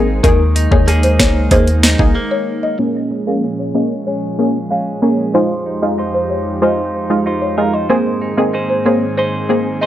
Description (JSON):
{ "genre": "dancehall", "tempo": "94 BPM", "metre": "4/4", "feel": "straight", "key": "Bb dorian", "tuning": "A4 = 440 Hz", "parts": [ { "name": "folk marimba with medium mallets", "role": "melody", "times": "0.0-9.9 s", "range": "Bb4 to F5", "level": "-20 LUFS", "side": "left 1 dB", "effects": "low-pass filter, analog delay" }, { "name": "punchy chord stab", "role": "accompaniment", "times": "0.0-9.7 s", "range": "Ab3 to Ab4", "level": "-16 LUFS", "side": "equal", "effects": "chorus, sidechain pumping, low-pass filter" }, { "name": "airy breathy pad", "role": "sustained chords", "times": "0.0-9.9 s", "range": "F2 to Db5", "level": "-23 LUFS", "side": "equal", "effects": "chorus, sidechain pumping, low-pass filter" }, { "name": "direct-recorded clean electric guitar", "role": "arpeggios", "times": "0.0-9.9 s", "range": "Bb2 to C5", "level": "-22 LUFS", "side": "right 2 dB", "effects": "low-pass filter" }, { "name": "warm 808-style bass", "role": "bass", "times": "0.0-2.1 s", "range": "Ab1 to Eb2", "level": "-14 LUFS", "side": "equal", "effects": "none" }, { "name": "island pop drum kit", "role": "drums", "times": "0.2-2.1 s", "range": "finger snaps, hi-hat, kick drum, rim click, snare drum", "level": "-13 LUFS", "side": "equal", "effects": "overdrive" } ], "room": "little or no reverb", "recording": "dry, gritty hardware recording, transformer saturation", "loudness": "-13 LUFS", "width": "side -12 dB against mid", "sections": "0.0-2.8 A section; 2.8-9.9 B section", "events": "break 2.2-2.8; filter sweep 2.8-9.9", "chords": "0.2 Ebsus4; 2.8 Bbm7; 5.3 Fm7; 7.9 Abadd9", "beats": "| 0.24 0.88 1.51 2.15 | 2.79 3.43 4.07 4.71 | 5.34 5.98 6.62 7.26 | 7.90 8.54 9.18 9.81" }